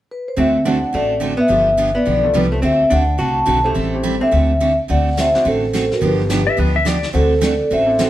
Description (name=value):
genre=country, western swing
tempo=213 BPM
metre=4/4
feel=swing 60% on 8ths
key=D mixolydian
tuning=A4 = 440 Hz
part: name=vibraphone with soft mallets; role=melody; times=0.1-8.1 s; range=F#4 to A5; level=-17 LUFS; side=equal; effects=none
part: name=archtop guitar, miked and amplified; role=second line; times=0.4-4.7 s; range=G3 to F#4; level=-22 LUFS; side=right 1 dB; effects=none
part: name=bright upright piano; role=accompaniment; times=0.4-8.1 s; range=A3 to A4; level=-27 LUFS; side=left 2 dB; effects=none
part: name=picked steel-string acoustic guitar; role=accompaniment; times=0.4-8.1 s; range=D3 to A4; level=-21 LUFS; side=right 4 dB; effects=none
part: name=upright bass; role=bass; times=0.4-8.1 s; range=G1 to D2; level=-20 LUFS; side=left 1 dB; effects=none
part: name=vintage brush drum kit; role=drums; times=4.9-8.1 s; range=brushed snare drum, hi-hat, snare drum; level=-28 LUFS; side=left 2 dB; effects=none
part: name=clean lap steel guitar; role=second line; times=6.5-7.1 s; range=B4 to E5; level=-19 LUFS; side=left 4 dB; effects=none
room=moderate stone room reverb, RT60 0.9 s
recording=band playing live in one room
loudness=-14 LUFS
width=side -14 dB against mid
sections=0.4-4.9 A section; 4.9-8.1 B section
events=none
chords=0.4 D9; 1.5 G9; 2.6 D9; 3.8 Am7; 4.3 D9; 6.0 G7; 7.1 D9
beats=0.10 | 0.38 0.66 0.94 1.22 | 1.50 1.79 2.07 2.35 | 2.63 2.91 3.19 3.48 | 3.76 4.04 4.32 4.60 | 4.89 5.17 5.45 5.73 | 6.01 6.29 6.58 6.86 | 7.14 7.42 7.70 7.99